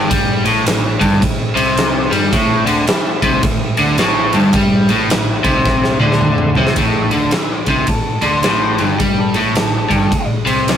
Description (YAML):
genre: blues rock power trio and southern rock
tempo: 108 BPM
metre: 4/4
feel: swing 62% on 8ths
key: A minor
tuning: A4 = 442 Hz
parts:
  - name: overdriven tonewheel organ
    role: sustained chords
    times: 0.0-6.7 s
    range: A3 to Bb4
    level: -27 LUFS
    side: right 2 dB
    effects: slow rotary speaker
  - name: overdriven electric guitar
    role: riff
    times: 0.0-10.8 s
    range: G2 to G3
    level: -15 LUFS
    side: equal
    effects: none
  - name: vintage muted fingered electric bass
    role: bass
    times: 0.0-10.8 s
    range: G1 to G2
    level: -23 LUFS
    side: right 1 dB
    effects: none
  - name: huge arena drum kit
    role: drums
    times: 0.1-10.8 s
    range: kick drum, ride cymbal, snare drum, toms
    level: -17 LUFS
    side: equal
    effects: none
  - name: octave-fuzz lead guitar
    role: melody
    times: 6.8-10.8 s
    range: A4 to E5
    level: -23 LUFS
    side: left 1 dB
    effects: distortion
room: light reverb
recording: rough rehearsal-room recording, warm saturation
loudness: -12 LUFS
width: side -9 dB against mid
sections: 0.0-6.8 A section; 6.8-10.8 B section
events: drum fill 5.7-6.8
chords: 0.0 Am